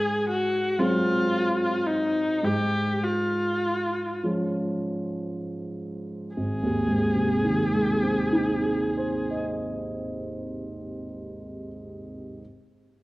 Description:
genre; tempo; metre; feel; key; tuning
classical, romantic duo for viola and grand piano; 26-40 BPM (dotted quarters); 6/8; rubato; Ab major; A4 = 442 Hz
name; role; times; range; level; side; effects
rich viola; melody; 0.0-9.4 s; Eb4 to Ab4; -26 LUFS; equal; none
dark baby grand piano; accompaniment; 0.0-12.4 s; Ab1 to Eb5; -26 LUFS; equal; none
room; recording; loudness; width
moderate recital hall reverb, RT60 1.7 s; worn, warbling old tape, cassette tape, warbly pitch drift; -23 LUFS; side -19 dB against mid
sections
0.0-6.4 A section; 6.4-10.2 B section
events
slowing down 0.0-6.4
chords
0.0 Ab7; 2.4 Db/Ab; 6.4 Ab

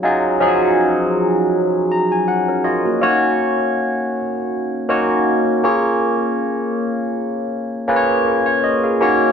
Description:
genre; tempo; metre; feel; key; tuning
soul; 80 BPM; 4/4; swing 54% on 16ths; Eb minor; A4 = 436 Hz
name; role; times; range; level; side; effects
barky tine electric piano; solo; 0.0-9.3 s; F3 to Bb5; -15 LUFS; equal; phaser
room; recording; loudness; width
moderate stone room reverb, RT60 1.2 s; band playing live in one room; -15 LUFS; side -7 dB against mid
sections
0.0-3.0 A section; 3.0-9.3 B section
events
tine electric piano fill 1.5-3.0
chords
0.0 Ebm11; 3.0 Ebm7; 5.6 Bbm7

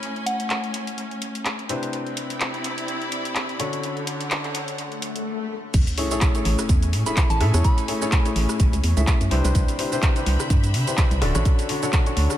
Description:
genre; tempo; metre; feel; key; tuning
piano house; 126 BPM; 4/4; swing 56% on 16ths; A major; A4 = 438 Hz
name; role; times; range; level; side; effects
clear upright piano; riff; 0.0-12.4 s; A2 to E5; -28 LUFS; left 2 dB; sidechain pumping, dub echo
house drum kit; drums; 0.0-12.4 s; crash cymbal, handclaps, hi-hat, rim click, shaker; -28 LUFS; equal; small room reverb, dub echo
clear symphonic string section; texture; 0.0-12.4 s; D3 to B5; -31 LUFS; left 1 dB; sidechain pumping
soft synth bell; melody; 0.3-0.6, 7.1-8.3 s; F#5 to B5; -31 LUFS; right 1 dB; chorus, dub echo
swell and sub drop; sound effects; 4.9-7.6 s; none; -32 LUFS; left 2 dB; none
organ-like FM bass; bass; 5.7-12.3 s; D1 to C3; -20 LUFS; equal; tube saturation, sidechain pumping
electronic kick drum; drums; 5.7-12.0 s; none; -19 LUFS; equal; small room reverb
room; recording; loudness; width
light reverb; echo-heavy mix; -20 LUFS; side -12 dB against mid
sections
0.0-5.7 A section; 5.7-12.4 B section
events
swell 4.9-5.7; drop 5.7-12.4; impact 5.7-7.6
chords
0.0 Amaj7; 1.7 Cmaj9; 3.6 Dmaj7; 5.7 Amaj7; 9.3 Cmaj9; 11.2 Dmaj7

